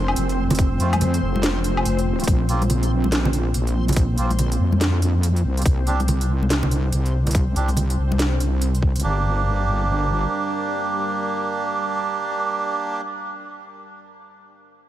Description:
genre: deep dubstep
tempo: 142 BPM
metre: 4/4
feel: swing 62% on 16ths, half-time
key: G minor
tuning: A4 = 440 Hz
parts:
  - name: deep dark ambient pad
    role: sustained chords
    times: 0.0-13.0 s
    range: G3 to C5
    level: -31 LUFS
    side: equal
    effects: chorus, built-in reverb
  - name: wobble bass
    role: bass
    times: 0.0-10.3 s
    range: F1 to F2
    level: -20 LUFS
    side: equal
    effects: chorus, tube saturation
  - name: backwards swelling texture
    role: texture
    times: 0.0-9.0 s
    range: C4 to C5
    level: -30 LUFS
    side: right 2 dB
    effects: built-in reverb
  - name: garage drum kit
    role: drums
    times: 0.1-9.1 s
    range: hi-hat, snare drum, woodblock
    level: -26 LUFS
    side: equal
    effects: none
  - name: congas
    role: percussion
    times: 0.5-8.2 s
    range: none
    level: -27 LUFS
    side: equal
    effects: dub echo
  - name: electronic kick drum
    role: drums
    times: 0.6-8.9 s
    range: none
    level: -18 LUFS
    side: equal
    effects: none
  - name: melodica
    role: stabs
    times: 0.8-13.0 s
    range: A3 to G4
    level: -26 LUFS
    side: right 4 dB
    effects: low-pass filter, dub echo
room: little or no reverb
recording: none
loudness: -19 LUFS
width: side -12 dB against mid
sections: 0.0-9.0 A section; 9.0-12.4 B section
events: filter sweep on ambient pad 0.0-9.0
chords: 0.0 F; 2.3 Bbsus2; 5.7 Csus2; 9.0 Gm

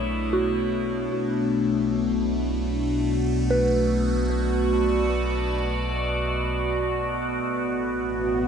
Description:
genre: ambient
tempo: 76 BPM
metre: 4/4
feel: straight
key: unclear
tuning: A4 = 440 Hz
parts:
  - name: evolving wavetable pad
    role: sustained chords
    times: 0.0-8.5 s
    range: A2 to D5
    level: -24 LUFS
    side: equal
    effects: phaser, built-in reverb
  - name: soft synth bell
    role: arpeggios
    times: 0.0-7.5 s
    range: F#4 to B4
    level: -30 LUFS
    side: right 1 dB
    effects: chorus, phaser, ping-pong delay
  - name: warm sub bass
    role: bass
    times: 0.0-8.5 s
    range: A1 to B1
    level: -29 LUFS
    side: right 1 dB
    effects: none
  - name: bowed-like drone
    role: drone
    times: 7.7-8.5 s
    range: B3 to F#4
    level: -28 LUFS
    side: right 2 dB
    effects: built-in reverb
room: wet huge ambient reverb, RT60 7.9 s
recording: nothing above 10.4 kHz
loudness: -22 LUFS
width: side -7 dB against mid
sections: 0.0-8.5 A section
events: none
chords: 0.0 Bm11; 1.1 E7sus4/B; 7.4 Asus2

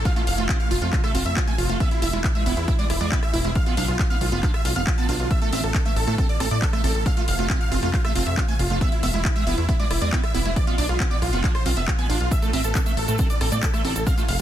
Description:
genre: uplifting trance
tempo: 137 BPM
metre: 4/4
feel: straight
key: A harmonic minor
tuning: A4 = 444 Hz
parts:
  - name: supersaw chords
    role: melody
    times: 0.0-14.4 s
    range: E4 to A5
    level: -28 LUFS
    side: right 1 dB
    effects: sidechain pumping, digital delay
  - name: wide unison pluck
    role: second line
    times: 0.0-14.4 s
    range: E5 to A6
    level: -36 LUFS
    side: right 1 dB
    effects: sidechain pumping, digital delay
  - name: plucky analog bass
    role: bass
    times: 0.0-14.4 s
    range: E1 to A2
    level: -25 LUFS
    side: equal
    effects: sidechain pumping
  - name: downlifter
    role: sound effects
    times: 0.0-1.8 s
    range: none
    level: -44 LUFS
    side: equal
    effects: none
  - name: liquid acid bass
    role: arpeggios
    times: 0.1-14.2 s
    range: G#3 to F4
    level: -30 LUFS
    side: right 6 dB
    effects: lush chorus, sidechain pumping, digital delay
  - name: electronic kick drum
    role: drums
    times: 0.1-14.2 s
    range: none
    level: -23 LUFS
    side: equal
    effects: studio reverb
  - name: house drum kit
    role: drums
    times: 0.1-14.4 s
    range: handclaps, hi-hat, rim click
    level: -30 LUFS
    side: left 1 dB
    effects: studio reverb
  - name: tube shaker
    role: percussion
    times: 12.3-14.4 s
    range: none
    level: -37 LUFS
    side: right 2 dB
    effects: none
room: little or no reverb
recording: dense, heavily limited modern master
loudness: -20 LUFS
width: side -11 dB against mid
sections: 0.0-14.4 A section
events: none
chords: 0.1 F; 1.8 E; 3.6 Bdim; 5.3 Am; 7.1 F; 8.8 E; 10.6 Bdim; 12.3 Am

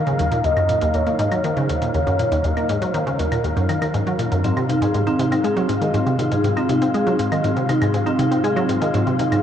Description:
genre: ambient, sequencer-driven space music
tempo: 120 BPM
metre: 4/4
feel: straight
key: Eb dorian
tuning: A4 = 440 Hz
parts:
  - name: mellow horn-like synth lead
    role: melody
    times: 0.0-3.9 s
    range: Bb4 to F5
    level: -25 LUFS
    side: equal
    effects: phaser, wide subtle chorus, tape echo
  - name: resonant blip pluck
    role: riff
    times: 0.0-9.4 s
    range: Eb2 to Eb4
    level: -20 LUFS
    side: equal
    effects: chorus, tape echo
  - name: wind-like tuned noise texture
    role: texture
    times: 0.0-9.4 s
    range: Eb4 to F5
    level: -26 LUFS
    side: left 2 dB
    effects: built-in reverb
  - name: electronic hi-hat and claves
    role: percussion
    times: 0.1-9.4 s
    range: none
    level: -35 LUFS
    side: equal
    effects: tape echo
  - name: vibraphone with medium mallets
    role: arpeggios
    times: 4.4-9.4 s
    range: C4 to Eb5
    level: -21 LUFS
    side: equal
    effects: auto-pan, tape echo
room: wet huge ambient reverb, RT60 8.6 s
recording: worn, warbling old tape, cassette tape, warbly pitch drift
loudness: -17 LUFS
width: side -9 dB against mid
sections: 0.0-9.4 A section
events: none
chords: 0.0 Ebm; 4.4 Ab

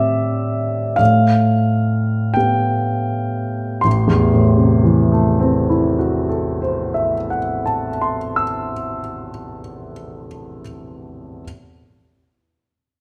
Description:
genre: classical, impressionist solo piano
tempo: 38-50 BPM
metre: 4/4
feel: rubato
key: A minor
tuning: A4 = 439 Hz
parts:
  - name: clear grand piano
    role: solo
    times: 0.0-11.5 s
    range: A1 to E6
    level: -18 LUFS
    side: equal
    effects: none
room: wet recital hall reverb, RT60 1.6 s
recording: none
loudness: -18 LUFS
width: mono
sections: 0.0-3.8 A section; 3.8-9.2 B section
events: slowing down 0.0-3.8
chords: 0.0 Am7; 1.0 Gadd9/A; 3.8 Am6

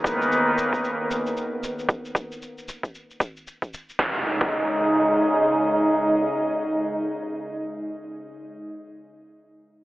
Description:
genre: organic downtempo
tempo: 114 BPM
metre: 4/4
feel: swing 60% on 16ths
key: unclear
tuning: A4 = 441 Hz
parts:
  - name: airy breathy pad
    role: sustained chords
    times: 0.0-8.5 s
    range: C#2 to D#4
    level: -23 LUFS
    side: equal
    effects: chorus, sidechain pumping
  - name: electronic kick drum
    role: drums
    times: 0.0-4.5 s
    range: none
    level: -25 LUFS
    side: equal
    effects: none
  - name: shaker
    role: drums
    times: 0.1-4.0 s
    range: none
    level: -41 LUFS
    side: left 1 dB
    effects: none
  - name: udu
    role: percussion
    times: 0.5-0.6 s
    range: none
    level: -48 LUFS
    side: left 1 dB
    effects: none
  - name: impact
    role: sound effects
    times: 4.0-8.6 s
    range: none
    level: -30 LUFS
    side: equal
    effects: none
room: moderate lush hall reverb, RT60 1.8 s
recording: telephone sound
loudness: -21 LUFS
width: side -17 dB against mid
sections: 0.0-4.0 A section; 4.0-8.2 B section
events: none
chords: 0.0 Bmaj9/C#; 4.0 C#5

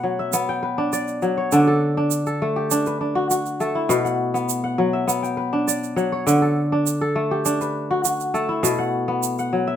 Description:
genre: west african traditional, West African string and xylophone music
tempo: 101 BPM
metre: 4/4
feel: straight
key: D major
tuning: A4 = 440 Hz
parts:
  - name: kora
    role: arpeggios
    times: 0.0-9.8 s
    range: B2 to G5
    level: -19 LUFS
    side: left 1 dB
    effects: none
  - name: tube shaker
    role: percussion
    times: 0.3-9.5 s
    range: none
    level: -26 LUFS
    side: right 11 dB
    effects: none
room: moderate studio reverb, RT60 0.7 s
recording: minimal, uncompressed stereo recording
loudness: -19 LUFS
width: side -9 dB against mid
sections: 0.0-9.8 A section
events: none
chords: 0.0 Bm; 1.5 D; 3.9 Bm; 6.3 D; 8.6 Bm

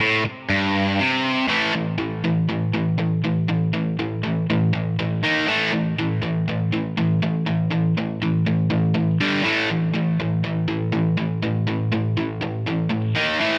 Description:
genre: rock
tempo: 121 BPM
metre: 4/4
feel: straight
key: unclear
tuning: A4 = 438 Hz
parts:
  - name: cranked stack guitar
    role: solo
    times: 0.0-13.6 s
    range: G2 to D#4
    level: -22 LUFS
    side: equal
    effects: overdrive
room: light reverb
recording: none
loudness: -22 LUFS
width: mono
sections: 0.0-1.5 A section; 1.5-13.6 B section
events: none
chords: 0.0 Gsus24; 1.5 A5; 5.2 D#5; 5.5 A5; 9.2 G5; 9.4 A5; 13.2 D#5

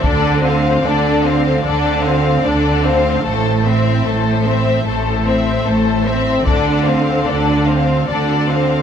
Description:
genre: cinematic, epic orchestral film score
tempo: 75 BPM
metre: 4/4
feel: straight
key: D minor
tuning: A4 = 441 Hz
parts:
  - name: rich symphonic violin section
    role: melody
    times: 0.0-8.8 s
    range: C5 to F5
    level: -24 LUFS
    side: left 4 dB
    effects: none
  - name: rich symphonic violin section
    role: second line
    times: 0.0-8.8 s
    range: A4 to C5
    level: -20 LUFS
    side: left 4 dB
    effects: none
  - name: rich symphonic viola section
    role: accompaniment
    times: 0.0-8.8 s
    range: A3 to D4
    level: -20 LUFS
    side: left 2 dB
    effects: none
  - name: rich symphonic cello section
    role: bass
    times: 0.0-8.8 s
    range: A2 to D3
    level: -19 LUFS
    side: right 3 dB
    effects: none
  - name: rich symphonic double bass section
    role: bass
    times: 0.0-8.8 s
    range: A1 to D2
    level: -19 LUFS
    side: right 2 dB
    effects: none
  - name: solo taiko drums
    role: drums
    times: 0.0-1.6, 6.5-8.0 s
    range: none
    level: -19 LUFS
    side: left 1 dB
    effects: none
room: moderate concert hall reverb, RT60 2.2 s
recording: none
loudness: -13 LUFS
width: side -8 dB against mid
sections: 0.0-8.8 A section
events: build-up 0.0-8.8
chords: 0.0 Dm7; 3.3 Am; 6.5 Dm7

